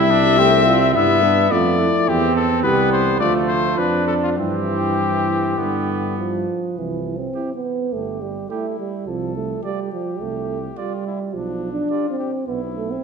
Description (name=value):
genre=classical, brass quintet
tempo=106 BPM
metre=4/4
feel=straight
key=C major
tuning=A4 = 442 Hz
part: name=warm cornet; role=melody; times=0.0-13.0 s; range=D4 to E5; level=-22 LUFS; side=left 7 dB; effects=none
part: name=clear trumpet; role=second line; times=0.0-12.1 s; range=A3 to D5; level=-26 LUFS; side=right 6 dB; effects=none
part: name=warm French horn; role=accompaniment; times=0.0-12.1 s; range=D4 to G4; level=-23 LUFS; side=left 2 dB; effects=none
part: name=warm euphonium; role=accompaniment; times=0.0-13.0 s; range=D3 to D4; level=-24 LUFS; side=right 4 dB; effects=none
part: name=dark tuba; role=bass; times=0.0-13.0 s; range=G1 to G2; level=-24 LUFS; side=right 3 dB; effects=none
room=wet concert hall reverb, RT60 2.1 s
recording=minimal, uncompressed stereo recording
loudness=-17 LUFS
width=side -5 dB against mid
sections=0.0-6.8 A section; 6.8-13.0 B section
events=none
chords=0.0 C; 1.0 G; 2.1 C/E; 3.2 Dm; 4.4 C/G; 5.6 G; 6.8 C; 9.1 Dm7/C (rootless); 11.3 G/B (rootless)